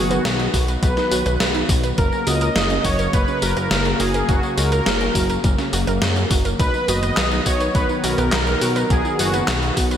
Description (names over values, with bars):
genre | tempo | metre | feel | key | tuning
synthwave | 104 BPM | 4/4 | straight | B major | A4 = 440 Hz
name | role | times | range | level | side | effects
soft supersaw | melody | 0.0-9.7 s | F#4 to D#5 | -23 LUFS | equal | digital delay, slapback echo
warm analog pad | sustained chords | 0.0-10.0 s | C#3 to B3 | -26 LUFS | left 1 dB | chorus
analog pluck | arpeggios | 0.0-10.0 s | A#3 to B4 | -27 LUFS | right 2 dB | chorus, digital delay, slapback echo
chorused synth bass | bass | 0.0-10.0 s | F#1 to F#2 | -22 LUFS | equal | none
gated 80s digital drum machine | drums | 0.1-10.0 s | handclaps, hi-hat, snare drum, tambourine | -23 LUFS | equal | gated reverb, gated reverb snare
electronic kick drum | drums | 0.5-9.9 s | none | -21 LUFS | equal | overdrive
room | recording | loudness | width
moderate lush hall reverb, RT60 2.5 s | big arena sound | -16 LUFS | side -9 dB against mid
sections
0.0-10.0 A section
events
none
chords
0.0 B; 2.0 F#; 6.6 B